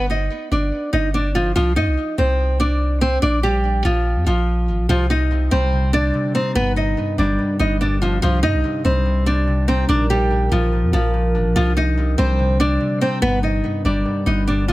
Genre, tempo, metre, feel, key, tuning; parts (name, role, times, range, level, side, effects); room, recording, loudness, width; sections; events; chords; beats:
hip hop, trap; 144 BPM; 4/4; half-time; C minor; A4 = 441 Hz
nylon-string guitar; melody; 0.0-14.7 s; F3 to Eb5; -20 LUFS; equal; digital delay
long sustained 808-style bass; bass; 0.0-14.7 s; G1 to G2; -19 LUFS; equal
concert harp; accompaniment; 4.9-14.7 s; G2 to Eb4; -23 LUFS; left 1 dB
small room ambience; -16 LUFS; side -18 dB against mid
0.0-14.7 A section
0.0 G5; 1.6 Cm; 3.2 Bb5; 4.9 Cm; 6.6 G; 8.2 Cm; 9.9 Bb; 11.6 Cm; 13.2 G
0.31 0.72 1.14 | 1.56 1.97 2.39 2.81 | 3.22 3.64 4.06 4.47 | 4.89 5.31 5.72 6.14 | 6.56 6.97 7.39 7.81 | 8.22 8.64 9.06 9.47 | 9.89 10.31 10.72 11.14 | 11.56 11.97 12.39 12.81 | 13.22 13.64 14.06 14.47